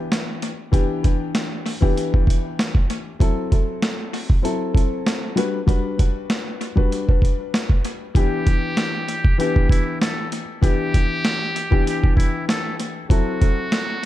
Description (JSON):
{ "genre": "hip hop, boom-bap hip-hop", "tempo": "97 BPM", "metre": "4/4", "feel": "swing 54% on 16ths", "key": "E minor", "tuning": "A4 = 440 Hz", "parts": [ { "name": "dark upright piano", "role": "accompaniment", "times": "0.0-14.1 s", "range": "E3 to B4", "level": "-24 LUFS", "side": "left 3 dB", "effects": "cassette tape, tape echo" }, { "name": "boom bap sampler-style drum kit", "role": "drums", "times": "0.1-13.9 s", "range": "hi-hat, kick drum, snare drum", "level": "-18 LUFS", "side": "equal", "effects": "tape echo" }, { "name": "trumpet with metal mute", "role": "melody", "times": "8.2-14.1 s", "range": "E4 to A4", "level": "-26 LUFS", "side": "equal", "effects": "tape echo" } ], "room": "little or no reverb", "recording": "echo-heavy mix", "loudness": "-18 LUFS", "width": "side -14 dB against mid", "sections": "0.0-8.2 A section; 8.2-14.1 B section", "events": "none", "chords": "0.0 Em7; 3.2 F#m7b5; 5.4 Gmaj7; 8.2 Em7; 13.1 F#m7b5", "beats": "0.11 | 0.73 1.35 1.97 2.58 | 3.20 3.82 4.44 5.06 | 5.68 6.30 6.92 7.53 | 8.15 8.77 9.39 10.01 | 10.63 11.24 11.86 12.48 | 13.10 13.72" }